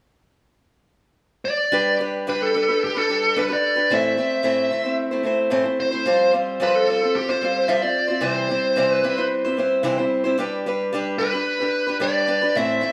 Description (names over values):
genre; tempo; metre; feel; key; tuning
rock; 111 BPM; 4/4; straight; unclear; A4 = 442 Hz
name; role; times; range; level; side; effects
smooth overdriven lead guitar; melody; 1.4-12.9 s; G4 to E5; -24 LUFS; equal; analog delay
picked acoustic archtop guitar; accompaniment; 1.7-12.9 s; A2 to C5; -24 LUFS; equal; plate reverb
room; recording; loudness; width
wet studio reverb, RT60 0.7 s; small room ambience; -21 LUFS; mono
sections
0.0-1.7 A section; 1.7-10.4 B section; 10.4-12.9 C section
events
none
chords
0.0 N.C.; 1.7 G; 3.9 Am; 6.1 Fsus2; 8.2 C; 10.4 G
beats
0.10 0.64 1.18 | 1.73 2.27 2.81 3.35 | 3.89 4.44 4.98 5.52 | 6.06 6.60 7.14 7.68 | 8.22 8.77 9.31 9.85 | 10.39 10.93 11.47 12.01 | 12.55